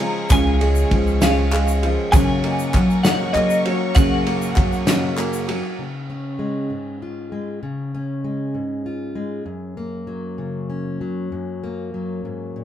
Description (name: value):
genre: indie folk with a building arrangement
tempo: 65 BPM (dotted quarters)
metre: 6/8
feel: straight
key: F# major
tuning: A4 = 437 Hz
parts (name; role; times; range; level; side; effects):
- twelve-string electric guitar; melody; 0.0-5.4 s; C#5 to A#5; -24 LUFS; left 1 dB; tremolo
- felt-muted upright piano; accompaniment; 0.0-5.8 s; F#1 to D#5; -33 LUFS; left 4 dB; none
- picked steel-string acoustic guitar; accompaniment; 0.0-5.8 s; F#2 to A#4; -25 LUFS; left 2 dB; none
- warm studio string section; sustained chords; 0.0-5.8 s; G#4 to C#6; -32 LUFS; left 1 dB; none
- clear upright piano; arpeggios; 0.0-5.8 s; E#3 to C#4; -24 LUFS; right 2 dB; none
- upright bass; bass; 0.0-5.6 s; C#2 to F#3; -22 LUFS; equal; none
- loose indie drum kit; drums; 0.0-5.6 s; kick drum, ride cymbal, snare drum; -21 LUFS; equal; none
- egg shaker; percussion; 0.3-5.5 s; none; -35 LUFS; left 5 dB; none
- group handclap; percussion; 0.3-5.7 s; none; -32 LUFS; left 1 dB; none
- fingerpicked plugged-in steel-string acoustic guitar; accompaniment; 5.8-12.6 s; F#2 to E#4; -26 LUFS; left 1 dB; none
room: moderate studio reverb, RT60 0.8 s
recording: band playing live in one room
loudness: -18 LUFS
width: side -11 dB against mid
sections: 0.0-5.8 A section; 5.8-12.6 B section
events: none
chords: 0.0 C#; 2.1 F#; 5.8 C#; 9.5 F#